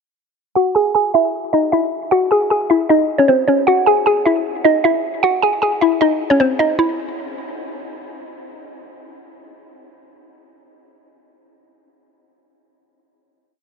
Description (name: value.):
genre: hip hop.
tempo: 154 BPM.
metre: 4/4.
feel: half-time.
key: C# harmonic minor.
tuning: A4 = 440 Hz.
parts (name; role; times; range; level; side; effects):
mallet-like synth pluck; solo; 0.6-7.9 s; B#3 to G#5; -14 LUFS; equal; chorus, phaser, low-pass filter.
room: moderate huge ambient reverb, RT60 8.0 s.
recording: none.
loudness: -14 LUFS.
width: side -5 dB against mid.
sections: 0.6-6.8 breakdown; 6.8-9.9 final note.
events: filter sweep on synth pluck 0.6-6.8.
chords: 0.6 C#m (rootless); 6.8 N.C..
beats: | 0.55 0.94 1.33 1.72 | 2.11 2.50 2.89 3.28 | 3.67 4.06 4.45 4.84 | 5.23 5.62 6.01 6.40 | 6.79 7.18 7.57.